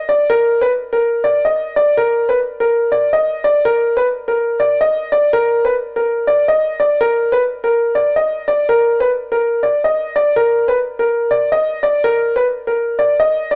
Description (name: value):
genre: hip hop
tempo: 143 BPM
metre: 4/4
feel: half-time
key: unclear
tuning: A4 = 439 Hz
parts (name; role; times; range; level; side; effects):
- warm upright piano; solo; 0.0-13.6 s; Bb4 to Eb5; -12 LUFS; equal; cassette tape
room: little or no reverb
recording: home recording on cassette, AM radio sound, faint mains hum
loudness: -13 LUFS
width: side -37 dB against mid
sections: 0.0-7.0 A section; 7.0-13.6 A section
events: none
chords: none